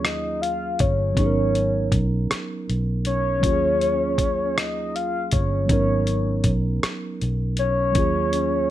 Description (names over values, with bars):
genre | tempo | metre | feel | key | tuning
slow six-eight R&B | 53 BPM (dotted quarters) | 6/8 | straight | Eb minor | A4 = 438 Hz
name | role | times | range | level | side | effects
soft octave-layered synth lead | melody | 0.0-8.7 s | Db5 to F5 | -23 LUFS | left 2 dB | chorus, slapback echo
mellow tine electric piano | accompaniment | 0.0-8.7 s | Gb3 to Bb4 | -27 LUFS | right 4 dB | none
vintage muted fingered electric bass | bass | 0.0-8.7 s | G1 to Eb2 | -25 LUFS | equal | none
dusty soul sampler-style drum kit | drums | 0.0-8.5 s | hi-hat, kick drum, rim click | -24 LUFS | equal | none
room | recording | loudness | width
light reverb | none | -20 LUFS | side -13 dB against mid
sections
0.0-8.7 A section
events
none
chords
0.0 Ebm11; 1.2 Abm11; 3.4 Ebm11; 5.7 Abm11; 8.0 Ebm11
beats
0.03 | 1.17 2.30 | 3.43 4.56 | 5.69 6.83 | 7.96